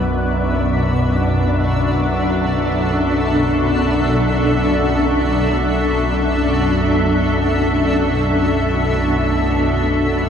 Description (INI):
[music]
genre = dark ambient drone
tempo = free time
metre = none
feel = none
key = unclear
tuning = A4 = 440 Hz
[part]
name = granular cloud pad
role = sustained chords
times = 0.0-10.3 s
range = B2 to E5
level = -17 LUFS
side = equal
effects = built-in reverb
[part]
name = organ-like drone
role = drone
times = 0.0-10.3 s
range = B1 to F#2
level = -18 LUFS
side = equal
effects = ensemble chorus, built-in reverb
[part]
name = flickering grainy texture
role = texture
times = 0.0-10.3 s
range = D5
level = -31 LUFS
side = right 2 dB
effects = built-in reverb
[sound]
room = wet huge ambient reverb, RT60 7.2 s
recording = none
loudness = -15 LUFS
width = side -7 dB against mid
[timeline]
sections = 0.0-10.3 A section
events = fade-out on synth texture 0.0-10.3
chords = 0.0 Dadd9/B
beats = free time